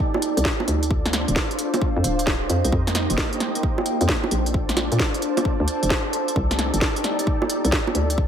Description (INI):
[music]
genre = UK garage, two-step garage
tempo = 132 BPM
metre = 4/4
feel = swing 66% on 16ths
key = C dorian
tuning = A4 = 442 Hz
[part]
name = warm analog pad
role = sustained chords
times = 0.0-8.3 s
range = D4 to Eb5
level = -31 LUFS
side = right 2 dB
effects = chorus, sidechain pumping
[part]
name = electronic kick drum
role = drums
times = 0.0-8.3 s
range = none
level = -24 LUFS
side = equal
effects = none
[part]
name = warbly tape-like pad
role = texture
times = 0.0-8.3 s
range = Bb3 to A5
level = -27 LUFS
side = equal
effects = chorus, built-in reverb, sidechain pumping
[part]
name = garage drum kit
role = drums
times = 0.1-8.2 s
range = bongos, hi-hat, snare drum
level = -24 LUFS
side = right 1 dB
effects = none
[part]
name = hollow knocking FM bass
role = bass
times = 0.4-8.3 s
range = D1 to Bb2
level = -23 LUFS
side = equal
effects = none
[sound]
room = light reverb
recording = none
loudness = -19 LUFS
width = side -8 dB against mid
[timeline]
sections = 0.0-8.3 A section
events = none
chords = 0.0 Cm69 (rootless); 0.9 Dm7; 2.5 F9sus4; 4.3 Bbmaj9; 6.4 Cm69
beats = 0.00 0.45 | 0.91 1.36 1.81 2.27 | 2.72 3.18 3.63 4.09 | 4.54 5.00 5.45 5.91 | 6.36 6.82 7.27 7.72 | 8.18